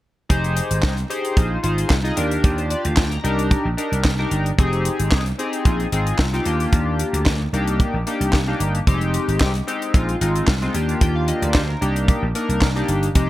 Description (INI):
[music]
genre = early-eighties boogie funk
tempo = 112 BPM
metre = 4/4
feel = straight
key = C minor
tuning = A4 = 438 Hz
[part]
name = chorused polysynth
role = accompaniment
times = 0.3-13.3 s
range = G3 to Bb5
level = -22 LUFS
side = left 2 dB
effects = none
[part]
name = vintage slap bass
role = bass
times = 0.3-13.3 s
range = F1 to Eb2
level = -22 LUFS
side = equal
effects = none
[part]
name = tight funk drum kit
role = drums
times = 0.3-13.3 s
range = handclaps, hi-hat, kick drum, snare drum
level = -20 LUFS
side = equal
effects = none
[sound]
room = small room ambience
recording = none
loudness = -18 LUFS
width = side -15 dB against mid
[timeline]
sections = 0.3-13.3 A section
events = none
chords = 0.3 Fm9; 1.4 Bb9sus4; 2.2 Ebmaj7; 3.2 Cm7; 4.6 Fm9; 5.7 Bb9sus4; 6.5 Ebmaj7; 7.5 Cm7; 8.9 Fm9; 9.9 Bb9sus4; 10.7 Ebmaj7; 11.8 Cm7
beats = | 0.30 0.83 1.37 1.91 | 2.44 2.98 3.51 4.05 | 4.58 5.12 5.66 6.19 | 6.73 7.26 7.80 8.33 | 8.87 9.40 9.94 10.48 | 11.01 11.55 12.08 12.62 | 13.15